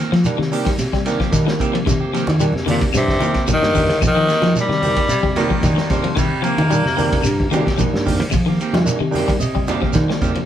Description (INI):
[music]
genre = afrobeat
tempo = 112 BPM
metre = 4/4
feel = straight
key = C minor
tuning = A4 = 440 Hz
[part]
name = clean electric guitar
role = stabs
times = 0.0-10.4 s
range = Eb3 to G4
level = -25 LUFS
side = right 5 dB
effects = none
[part]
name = vintage drum kit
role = drums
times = 0.0-10.5 s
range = hi-hat, kick drum, ride cymbal, snare drum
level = -23 LUFS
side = equal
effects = none
[part]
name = electric guitar at the edge of break-up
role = arpeggios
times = 0.1-10.4 s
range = C3 to G3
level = -24 LUFS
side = left 6 dB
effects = none
[part]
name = fingered electric bass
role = bass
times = 0.1-10.5 s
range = G2 to F3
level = -21 LUFS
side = equal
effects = none
[part]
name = overdriven tine electric piano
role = accompaniment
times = 0.2-10.4 s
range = Eb3 to G5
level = -25 LUFS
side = right 4 dB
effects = none
[part]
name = shekere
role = percussion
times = 0.2-10.4 s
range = none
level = -25 LUFS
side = right 3 dB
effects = none
[part]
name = congas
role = percussion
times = 1.9-10.4 s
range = none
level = -26 LUFS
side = right 1 dB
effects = none
[part]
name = raspy tenor saxophone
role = melody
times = 2.7-5.6 s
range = Bb2 to G3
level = -18 LUFS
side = left 1 dB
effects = none
[part]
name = raspy baritone saxophone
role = second line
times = 5.1-7.5 s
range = Eb3 to Bb3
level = -23 LUFS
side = equal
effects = none
[sound]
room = moderate studio reverb, RT60 0.7 s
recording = band playing live in one room, lossy compression artefacts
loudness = -15 LUFS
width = side -10 dB against mid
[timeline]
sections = 0.0-10.5 A section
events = tine electric piano fill 8.9-10.5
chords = 0.0 Cm7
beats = 0.26 0.79 1.33 | 1.87 2.41 2.94 3.48 | 4.02 4.56 5.10 5.63 | 6.17 6.71 7.25 7.79 | 8.33 8.86 9.40 9.94